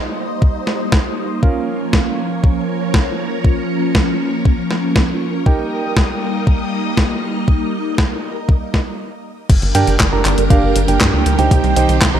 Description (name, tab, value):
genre	italo disco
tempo	119 BPM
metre	4/4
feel	straight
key	unclear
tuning	A4 = 440 Hz
part	phased string machine	sustained chords	0.0-12.2 s	D3 to Eb5	-20 LUFS	equal	ensemble chorus, phaser, shimmer reverb
part	warm electric grand piano	stabs	0.0-12.2 s	Db4 to Bb5	-21 LUFS	right 5 dB	shimmer reverb
part	electronic kick drum	drums	0.4-12.1 s	none	-14 LUFS	equal	none
part	clean 12-bit digital drum machine	drums	0.7-12.1 s	crash cymbal, handclaps, hi-hat, snare drum	-20 LUFS	equal	gated reverb
part	tight sequencer bass	bass	9.5-12.2 s	G1 to G2	-16 LUFS	equal	tube saturation
room	light reverb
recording	none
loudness	-14 LUFS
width	side -10 dB against mid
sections	0.0-9.5 A section; 9.5-12.2 B section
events	filter sweep on electric grand piano 0.0-9.5; filter sweep on string machine 0.0-9.5; stop 9.0-9.5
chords	0.0 Eb; 1.4 Bbm; 5.5 Eb; 9.5 Gm; 11.5 Cm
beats	0.42 0.92 | 1.43 1.93 2.44 2.94 | 3.44 3.95 4.45 4.96 | 5.46 5.97 6.47 6.97 | 7.48 7.98 8.49 8.99 | 9.49 10.00 10.50 11.01 | 11.51 12.02